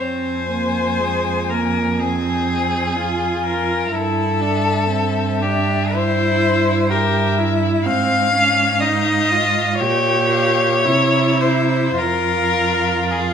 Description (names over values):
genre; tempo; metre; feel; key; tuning
classical, slow romantic movement for string quartet; 52-64 BPM; 4/4; rubato; F minor; A4 = 441 Hz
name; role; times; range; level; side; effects
rich violin; melody; 0.0-13.3 s; E5 to Ab5; -25 LUFS; left 8 dB; none
rich violin; second line; 0.0-13.3 s; G4 to F5; -19 LUFS; left 3 dB; none
rich viola; accompaniment; 0.0-13.3 s; Ab3 to G4; -22 LUFS; right 2 dB; none
rich cello; bass; 0.0-13.3 s; F2 to C3; -22 LUFS; right 5 dB; none
room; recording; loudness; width
moderate recital hall reverb, RT60 1.5 s; minimal, uncompressed stereo recording; -15 LUFS; side -7 dB against mid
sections
0.0-13.3 A section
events
none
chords
0.0 Fm; 3.9 Gsus2; 7.9 Fm/Ab; 9.8 Gdim/Bb; 10.9 C; 12.0 N.C.